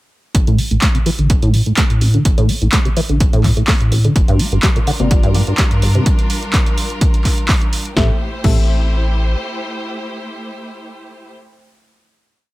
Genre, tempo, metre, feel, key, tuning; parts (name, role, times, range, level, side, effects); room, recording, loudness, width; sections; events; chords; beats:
acid house; 126 BPM; 4/4; swing 53% on 16ths; A phrygian; A4 = 441 Hz
saturated sub bass; bass; 0.3-9.4 s; G1 to A2; -16 LUFS; equal; sidechain pumping
electronic kick drum; drums; 0.3-8.6 s; -15 LUFS; equal; overdrive
punchy analog drum machine; drums; 0.3-8.6 s; crash cymbal, handclaps, hi-hat, snare drum; -21 LUFS; right 1 dB; overdrive
deep acid bass; riff; 0.5-8.6 s; G1 to C4; -18 LUFS; equal; tube saturation, analog chorus, tape echo
warm studio string section; sustained chords; 4.2-11.3 s; G3 to C5; -26 LUFS; equal; sidechain pumping
deep mellow chord stab; stabs; 5.0-11.8 s; Bb3 to E5; -25 LUFS; left 4 dB; chorus, tape echo
digital ambience; -12 LUFS; side -18 dB against mid
0.3-8.0 groove; 8.0-11.8 final chord
0.3 N.C.; 4.2 Gm7; 8.0 Am7
| 0.35 0.82 1.30 1.77 | 2.25 2.73 3.20 3.68 | 4.16 4.63 5.11 5.58 | 6.06 6.54 7.01 7.49 | 7.97 8.44 8.92 9.39 | 9.87 10.35 10.82 11.30